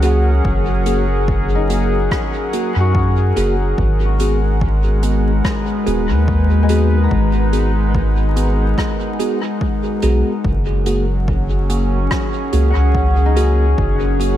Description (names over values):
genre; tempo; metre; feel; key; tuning
ambient dub; 72 BPM; 4/4; swing 54% on 16ths; G# minor; A4 = 440 Hz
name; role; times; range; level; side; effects
warbly tape-like pad; sustained chords; 0.0-14.4 s; F#3 to F#5; -21 LUFS; left 2 dB; chorus, built-in reverb
Celtic harp; arpeggios; 0.0-14.4 s; G#3 to A#5; -27 LUFS; left 4 dB; analog delay
bell-like tine electric piano; stabs; 0.0-14.4 s; A#3 to G#4; -23 LUFS; right 2 dB; phaser, dub echo
soft dub sub bass; bass; 0.0-14.4 s; D#1 to F#2; -16 LUFS; equal; none
soft-mallet drum kit; drums; 0.0-14.4 s; hi-hat, rim click; -29 LUFS; equal; dub echo
electronic kick drum; drums; 0.4-14.0 s; none; -22 LUFS; equal; overdrive
room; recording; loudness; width
light reverb, small room ambience; echo-heavy mix, vinyl crackle; -14 LUFS; side -12 dB against mid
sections
0.0-14.4 A section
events
none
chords
0.0 F#add9; 3.8 G#m7; 10.4 F#add9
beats
| 0.45 1.28 2.11 2.95 | 3.78 4.61 5.45 6.28 | 7.11 7.95 8.78 9.61 | 10.45 11.28 12.11 12.95 | 13.78